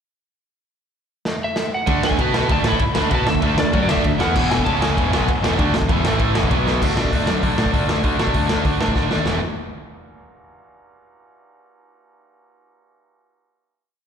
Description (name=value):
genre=punk rock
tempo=195 BPM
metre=4/4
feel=straight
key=unclear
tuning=A4 = 442 Hz
part: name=raw garage drum kit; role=drums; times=1.3-9.3 s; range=crash cymbal, hi-hat, kick drum, ride cymbal, snare drum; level=-21 LUFS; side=equal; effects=none
part: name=lightly driven lead guitar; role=melody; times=1.4-6.5 s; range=D5 to B5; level=-25 LUFS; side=equal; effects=slapback echo
part: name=distorted electric guitar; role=riff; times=1.9-9.4 s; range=E2 to B4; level=-24 LUFS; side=left 12 dB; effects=distortion, slapback echo
part: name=tight distorted guitar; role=riff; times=1.9-9.4 s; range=E2 to B4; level=-24 LUFS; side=right 14 dB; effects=distortion, slapback echo
part: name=tight distorted guitar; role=riff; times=1.9-6.8 s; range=E2 to B4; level=-25 LUFS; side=right 1 dB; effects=distortion, slapback echo
part: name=growling picked electric bass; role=bass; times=1.9-9.4 s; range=E1 to B2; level=-23 LUFS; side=equal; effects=overdrive
room=light reverb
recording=live gig heard through the venue's PA, recital hall reverb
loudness=-16 LUFS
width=side -7 dB against mid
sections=0.6-1.9 pickup bar; 1.9-6.8 riff; 6.8-9.3 outro; 9.3-10.5 final chord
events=drum fill 1.3-1.9, 6.7, 9.0-9.3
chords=0.6 N.C.; 1.9 D5; 2.2 B5; 2.5 D5; 4.4 E; 4.7 C#5; 5.0 E; 6.0 A5; 6.4 E; 6.5 B5; 6.8 D5; 9.3 E5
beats=| 0.64 0.95 1.26 1.57 | 1.88 2.19 2.50 2.81 | 3.12 3.43 3.73 4.04 | 4.35 4.66 4.97 5.28 | 5.59 5.89 6.20 6.51 | 6.82 7.12 7.43 7.73 | 8.04 8.35 8.65 8.96 | 9.27